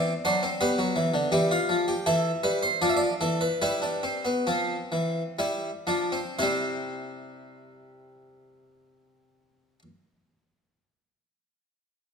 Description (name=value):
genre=classical, baroque-style 3-part fugue for harpsichord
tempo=57-85 BPM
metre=3/4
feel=straight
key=C major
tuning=A4 = 440 Hz
part: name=harpsichord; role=solo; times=0.0-9.8 s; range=C3 to E5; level=-24 LUFS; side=equal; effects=none
room=wet recital hall reverb, RT60 1.7 s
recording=minimal, uncompressed stereo recording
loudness=-24 LUFS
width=side -6 dB against mid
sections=0.0-6.4 A section; 6.4-12.1 B section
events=slowing down 0.3-6.4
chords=0.0 D7; 0.6 G; 1.3 Em; 2.8 Dm/F; 3.6 C/G; 5.4 G7; 6.4 C